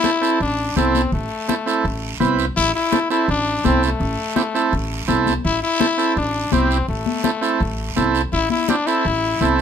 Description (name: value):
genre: latin, cumbia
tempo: 167 BPM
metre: 4/4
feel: straight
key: A minor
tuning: A4 = 440 Hz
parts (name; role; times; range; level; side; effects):
- growling trumpet; second line; 0.0-9.6 s; A3 to E4; -21 LUFS; left 5 dB; none
- overdriven combo organ; accompaniment; 0.0-9.6 s; C4 to B4; -20 LUFS; right 6 dB; none
- congas; percussion; 0.0-9.6 s; none; -23 LUFS; left 8 dB; none
- guiro; percussion; 0.0-9.6 s; none; -32 LUFS; right 7 dB; none
- upright bass; bass; 0.4-9.6 s; A1 to C2; -23 LUFS; equal; none
room: moderate studio reverb, RT60 0.6 s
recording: minimal, uncompressed stereo recording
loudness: -17 LUFS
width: side -8 dB against mid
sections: 0.0-9.6 A section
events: trumpet solo 0.0-9.6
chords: 0.0 Am